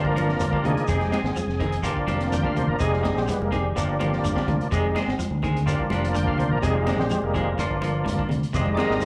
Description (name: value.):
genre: afrobeat.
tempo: 125 BPM.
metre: 4/4.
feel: straight.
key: F dorian.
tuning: A4 = 440 Hz.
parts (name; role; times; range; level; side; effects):
overdriven tonewheel organ; accompaniment; 0.0-9.1 s; F3 to G5; -28 LUFS; equal; chorus vibrato, slapback echo.
electric guitar at the edge of break-up; arpeggios; 0.0-9.1 s; C3 to Ab3; -33 LUFS; equal; ensemble chorus.
clean electric guitar; stabs; 0.0-8.9 s; Eb3 to Ab4; -34 LUFS; equal; spring reverb, slapback echo.
fingered electric bass; bass; 0.0-9.1 s; F1 to D2; -29 LUFS; equal; none.
crunchy breakbeat drum kit; drums; 0.0-9.1 s; hi-hat, kick drum, snare drum; -33 LUFS; equal; none.
congas; percussion; 0.1-9.1 s; none; -35 LUFS; equal; none.
shekere; percussion; 0.2-9.1 s; none; -38 LUFS; equal; none.
room: moderate club reverb, RT60 0.8 s.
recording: live gig heard through the venue's PA, club reverb.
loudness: -24 LUFS.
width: mono.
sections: 0.0-9.1 A section.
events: tonewheel organ solo 0.0-9.1.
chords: 0.0 Gm7; 0.9 Fm7; 1.8 Gm7; 2.8 Fm7; 3.8 Gm7; 4.7 Fm7; 5.7 Gm7; 6.6 Fm7; 7.6 Gm7; 8.5 Fm7.